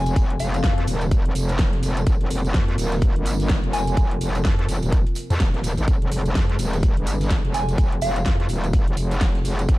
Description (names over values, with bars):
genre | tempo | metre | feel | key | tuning
bass house | 126 BPM | 4/4 | swing 59% on 16ths | F minor | A4 = 439 Hz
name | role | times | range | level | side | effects
soft synth bell | melody | 0.0-0.8, 3.7-4.1, 7.5-8.4 s | F5 to Ab5 | -29 LUFS | equal | chorus, phaser, tape echo
dark analog pad | sustained chords | 0.0-9.8 s | C4 to Bb4 | -32 LUFS | equal | chorus, sidechain pumping
metallic wobble bass | bass | 0.0-9.8 s | Eb1 to F2 | -23 LUFS | equal | distortion, chorus, tube saturation, sidechain pumping
big-room dance drum kit | drums | 0.1-9.8 s | hi-hat, snare drum | -32 LUFS | equal | overdrive
tambourine | percussion | 0.1-9.8 s | none | -38 LUFS | right 5 dB | none
electronic kick drum | drums | 0.2-9.8 s | none | -20 LUFS | equal | overdrive
street-band drum kit | drums | 0.2-9.8 s | hi-hat, snare drum | -42 LUFS | equal | none
room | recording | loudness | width
small room ambience | dark, warm production | -19 LUFS | side -18 dB against mid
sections
0.0-9.8 A section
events
none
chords
0.0 F5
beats
| 0.16 0.64 1.11 1.59 | 2.07 2.54 3.02 3.50 | 3.97 4.45 4.92 5.40 | 5.88 6.35 6.83 7.30 | 7.78 8.26 8.73 9.21 | 9.69